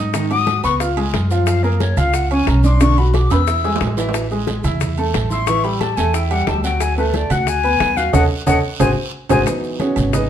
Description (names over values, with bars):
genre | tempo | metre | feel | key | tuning
Afro-Cuban jazz | 180 BPM | 4/4 | straight | C# minor | A4 = 440 Hz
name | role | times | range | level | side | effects
warm upright piano | accompaniment | 0.0-10.3 s | D3 to F#6 | -20 LUFS | right 2 dB | none
upright bass | bass | 0.0-10.3 s | G#1 to G#2 | -19 LUFS | equal | none
bongos | percussion | 0.1-10.3 s | none | -27 LUFS | left 6 dB | none
congas | percussion | 0.1-10.3 s | none | -25 LUFS | right 1 dB | none
guiro | percussion | 0.1-10.3 s | none | -33 LUFS | right 6 dB | none
maracas | percussion | 0.1-10.3 s | none | -36 LUFS | left 6 dB | none
timbales | percussion | 0.1-10.1 s | none | -28 LUFS | right 5 dB | none
breathy silver concert flute | second line | 0.3-9.4 s | G#4 to E6 | -20 LUFS | left 6 dB | none
room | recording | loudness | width
moderate studio reverb, RT60 0.8 s | heard from further back in the room | -15 LUFS | side -10 dB against mid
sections
0.0-9.5 A section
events
flute solo 0.0-9.5; drum fill 3.3-4.1, 8.6-9.5; band accent 8.1-9.5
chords
0.1 G#m7; 0.8 C#; 1.5 F#maj7; 2.8 Bm; 3.5 A5; 6.8 D6; 8.1 D#m7b5; 8.8 G#7; 9.5 C#m11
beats
| 0.14 0.48 0.81 1.14 | 1.48 1.81 2.14 2.48 | 2.81 3.14 3.48 3.81 | 4.14 4.48 4.81 5.14 | 5.48 5.81 6.14 6.48 | 6.81 7.14 7.47 7.81 | 8.14 8.47 8.81 9.14 | 9.47 9.80 10.14